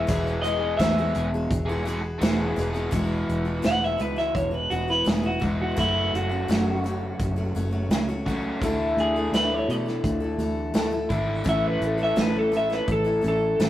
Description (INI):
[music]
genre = folk rock and heartland rock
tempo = 84 BPM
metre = 4/4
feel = straight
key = E major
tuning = A4 = 441 Hz
[part]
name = electric guitar through a small old amp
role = melody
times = 0.0-13.7 s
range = E4 to F#5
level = -26 LUFS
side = left 1 dB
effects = none
[part]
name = picked steel-string acoustic guitar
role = accompaniment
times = 0.0-13.7 s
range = F#2 to A4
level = -29 LUFS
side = left 2 dB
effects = none
[part]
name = crunchy overdriven guitar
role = riff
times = 0.0-13.7 s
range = E2 to G#4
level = -31 LUFS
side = equal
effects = none
[part]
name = fingered electric bass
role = bass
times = 0.0-13.7 s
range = E1 to B2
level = -29 LUFS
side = equal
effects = none
[part]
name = soft brush drum kit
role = drums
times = 0.1-13.7 s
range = hi-hat, kick drum, snare drum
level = -27 LUFS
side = right 1 dB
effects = none
[sound]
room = moderate stone room reverb, RT60 1.2 s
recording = rough rehearsal-room recording, tube saturation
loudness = -22 LUFS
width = side -13 dB against mid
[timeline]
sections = 0.0-2.9 A section; 2.9-13.7 B section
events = clean electric guitar solo 2.9-13.7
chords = 0.1 Eadd9; 5.8 F#m; 8.6 Dsus2; 11.5 A